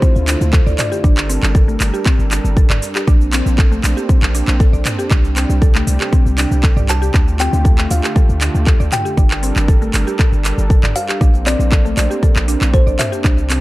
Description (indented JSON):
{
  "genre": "afro house",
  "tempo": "118 BPM",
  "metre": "4/4",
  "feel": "straight",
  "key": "unclear",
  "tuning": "A4 = 441 Hz",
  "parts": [
    { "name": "kalimba", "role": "melody", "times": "0.0-2.3, 6.9-13.6 s", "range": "C5 to A5", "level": "-24 LUFS", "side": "left 1 dB", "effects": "digital delay" },
    { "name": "warm analog pad", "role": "sustained chords", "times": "0.0-13.6 s", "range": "C3 to Bb4", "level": "-25 LUFS", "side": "right 2 dB", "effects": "chorus, sidechain pumping" },
    { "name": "mallet-like synth pluck", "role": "arpeggios", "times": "0.0-13.6 s", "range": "A3 to D5", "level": "-24 LUFS", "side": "left 1 dB", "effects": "chorus, sidechain pumping, digital delay" },
    { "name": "electronic kick drum", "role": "drums", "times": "0.0-13.4 s", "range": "none", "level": "-12 LUFS", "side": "equal", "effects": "none" },
    { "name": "house drum kit", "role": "drums", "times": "0.0-13.6 s", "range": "cabasa, handclaps, hi-hat, toms", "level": "-21 LUFS", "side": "right 1 dB", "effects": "none" },
    { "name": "warm 808-style bass", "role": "bass", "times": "0.2-13.6 s", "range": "G1 to D2", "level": "-17 LUFS", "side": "equal", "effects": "sidechain pumping" }
  ],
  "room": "little or no reverb",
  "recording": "dark, warm production",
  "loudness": "-12 LUFS",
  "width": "side -18 dB against mid",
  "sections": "0.0-13.6 A section",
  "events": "none",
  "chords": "0.0 Dm7; 1.0 Gmadd9; 3.1 Bbadd9; 5.1 C5; 7.1 Dm; 9.2 Gmadd9; 11.2 Bbadd9"
}